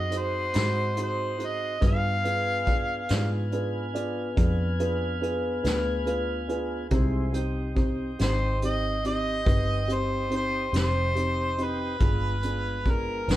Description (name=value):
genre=slow blues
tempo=47 BPM (dotted quarters)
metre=12/8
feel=straight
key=C harmonic minor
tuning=A4 = 441 Hz
part: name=mellow harmonica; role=melody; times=0.0-13.4 s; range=Bb4 to F5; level=-28 LUFS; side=equal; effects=overdrive
part: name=tonewheel organ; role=sustained chords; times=0.0-13.4 s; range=E3 to Ab4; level=-35 LUFS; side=left 2 dB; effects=slow rotary speaker
part: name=vintage muted fingered electric bass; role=bass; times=0.0-13.4 s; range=F1 to Ab2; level=-29 LUFS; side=equal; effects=none
part: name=dark baby grand piano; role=accompaniment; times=0.1-13.4 s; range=B3 to D6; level=-32 LUFS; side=right 1 dB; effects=none
part: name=vintage brush drum kit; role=drums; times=0.1-13.4 s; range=hi-hat, kick drum, snare drum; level=-27 LUFS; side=equal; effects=none
room=moderate stone room reverb, RT60 1.0 s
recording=band playing live in one room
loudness=-24 LUFS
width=side -14 dB against mid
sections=0.0-13.4 A section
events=grand piano fill 5.6-6.9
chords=0.0 Ab7; 1.8 G7b9; 6.9 Cm; 12.0 G7b9